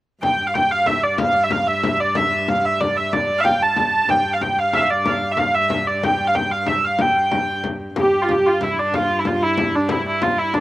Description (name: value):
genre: medieval dance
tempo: 124 BPM (dotted quarters)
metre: 6/8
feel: straight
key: unclear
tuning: A4 = 439 Hz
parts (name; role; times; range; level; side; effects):
- rich hurdy-gurdy; melody; 0.2-10.6 s; D4 to A5; -17 LUFS; right 1 dB; none
- rich viola da gamba; drone; 0.2-10.6 s; G2; -29 LUFS; right 1 dB; stereo widening
- frame drum; percussion; 0.2-10.6 s; none; -25 LUFS; left 4 dB; none
room: little or no reverb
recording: recorded outdoors, with no room sound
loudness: -16 LUFS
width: side -16 dB against mid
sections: 0.2-8.0 A section; 8.0-10.6 A section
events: none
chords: none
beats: | 0.23 0.71 | 1.20 1.68 | 2.16 2.65 | 3.13 3.61 | 4.10 4.58 | 5.07 5.55 | 6.03 6.51 | 7.00 7.48 | 7.97 8.45 | 8.93 9.42 | 9.90 10.38